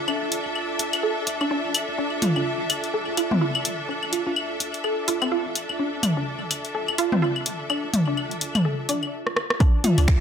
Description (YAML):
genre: minimal techno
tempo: 126 BPM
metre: 4/4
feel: swing 58% on 16ths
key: D minor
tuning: A4 = 438 Hz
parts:
  - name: punchy sub bass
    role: bass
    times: 0.0-10.2 s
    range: D1 to D2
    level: -27 LUFS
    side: right 1 dB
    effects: sidechain pumping, high-pass filter
  - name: clear studio string section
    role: texture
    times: 0.0-10.2 s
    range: D4 to E5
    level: -30 LUFS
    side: left 1 dB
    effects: sidechain pumping
  - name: swarming drone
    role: texture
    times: 0.0-9.1 s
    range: F4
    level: -36 LUFS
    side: right 5 dB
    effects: built-in reverb, sidechain pumping
  - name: resonant blip pluck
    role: riff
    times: 0.1-10.0 s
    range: C4 to A4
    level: -28 LUFS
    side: right 1 dB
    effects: analog chorus, sidechain pumping, ping-pong delay
  - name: electronic claves and toms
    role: percussion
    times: 0.1-10.1 s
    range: none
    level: -25 LUFS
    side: left 1 dB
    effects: overdrive, digital delay
  - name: punchy analog drum machine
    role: drums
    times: 0.3-10.2 s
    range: finger snaps, hi-hat, rim click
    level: -25 LUFS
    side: left 1 dB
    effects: overdrive
  - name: bell-like FM electric piano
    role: melody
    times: 2.2-4.3, 9.8-10.2 s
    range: F4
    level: -30 LUFS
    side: right 2 dB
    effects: chorus, digital delay
  - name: electronic kick drum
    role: drums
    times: 9.6-10.2 s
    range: none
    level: -17 LUFS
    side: equal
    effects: overdrive
room: moderate plate reverb, RT60 0.9 s, digital ambience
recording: none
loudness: -22 LUFS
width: side -8 dB against mid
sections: 0.0-9.6 A section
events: filter sweep on synth arpeggio sound 0.0-9.6; drum fill 9.2-9.6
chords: 0.0 Dm